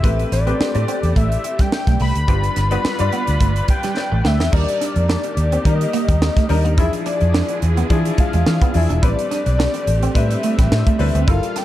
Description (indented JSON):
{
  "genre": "polished 1980s jazz-funk pop",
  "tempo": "107 BPM",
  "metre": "4/4",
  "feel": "swing 54% on 16ths",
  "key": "unclear",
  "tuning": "A4 = 440 Hz",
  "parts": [
    { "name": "fat analog lead", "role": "melody", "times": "0.0-11.6 s", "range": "D5 to B5", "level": "-24 LUFS", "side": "left 3 dB", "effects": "none" },
    { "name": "clear grand piano", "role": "accompaniment", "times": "0.0-11.6 s", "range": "F3 to G5", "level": "-25 LUFS", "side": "left 3 dB", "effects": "wide subtle chorus" },
    { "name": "clear studio string section", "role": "sustained chords", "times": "0.0-11.6 s", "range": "Eb3 to B4", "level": "-30 LUFS", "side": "right 1 dB", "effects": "none" },
    { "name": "clean electric guitar", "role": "riff", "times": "0.0-11.6 s", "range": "G3 to G4", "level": "-27 LUFS", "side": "right 5 dB", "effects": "analog chorus" },
    { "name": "vintage muted fingered electric bass", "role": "bass", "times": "0.0-11.4 s", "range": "E1 to E3", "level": "-18 LUFS", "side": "equal", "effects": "none" },
    { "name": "crisp fusion drum kit", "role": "drums", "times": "0.0-11.6 s", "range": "crash cymbal, hi-hat, kick drum, snare drum", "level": "-20 LUFS", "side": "equal", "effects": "none" }
  ],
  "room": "light reverb, small room ambience",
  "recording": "dark, warm production",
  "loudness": "-15 LUFS",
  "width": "side -14 dB against mid",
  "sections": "0.0-4.5 A section; 4.5-11.6 B section",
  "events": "grand piano fill 3.7-4.5; drum fill 4.0-4.5",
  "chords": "0.0 Am9; 2.3 G7; 4.5 Ebmaj7; 6.8 E7b9; 9.0 Am11"
}